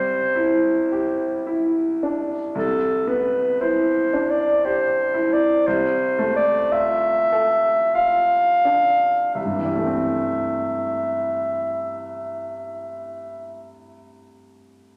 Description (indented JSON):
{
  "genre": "classical, impressionist duo for clarinet and grand piano",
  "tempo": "41-60 BPM",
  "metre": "3/4",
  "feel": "rubato",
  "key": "C major",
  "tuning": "A4 = 440 Hz",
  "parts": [
    { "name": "warm clarinet", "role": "melody", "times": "0.0-13.7 s", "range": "A4 to F5", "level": "-22 LUFS", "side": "equal", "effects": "none" },
    { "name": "clear concert grand piano", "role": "accompaniment", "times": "0.0-15.0 s", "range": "C2 to A4", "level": "-27 LUFS", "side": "equal", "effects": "none" }
  ],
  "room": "wet recital hall reverb, RT60 1.4 s",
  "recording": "none",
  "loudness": "-21 LUFS",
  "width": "mono",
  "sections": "0.0-2.6 A section; 2.6-9.4 B section; 9.4-13.5 C section",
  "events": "slowing down 0.9-9.4",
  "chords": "0.0 Cadd9; 2.6 Cmaj9; 5.7 Dm7/C; 9.4 C6"
}